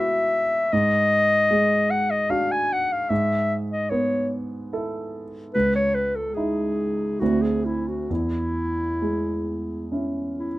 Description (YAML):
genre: classical, impressionist duo for clarinet and grand piano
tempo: 65-77 BPM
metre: 3/4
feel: rubato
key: E major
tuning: A4 = 441 Hz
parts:
  - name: warm clarinet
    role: melody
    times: 0.0-10.6 s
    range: E4 to G#5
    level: -22 LUFS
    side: left 1 dB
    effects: none
  - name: dark grand piano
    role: accompaniment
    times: 0.0-10.6 s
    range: C#2 to A4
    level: -25 LUFS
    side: right 1 dB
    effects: none
room: little or no reverb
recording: close, detailed microphones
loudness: -21 LUFS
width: side -17 dB against mid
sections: 0.0-10.6 A section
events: none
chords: 0.0 Eadd9/B; 0.7 G#5; 3.1 Asus2/G#; 5.5 C#madd9; 7.2 Dsus2; 8.1 E6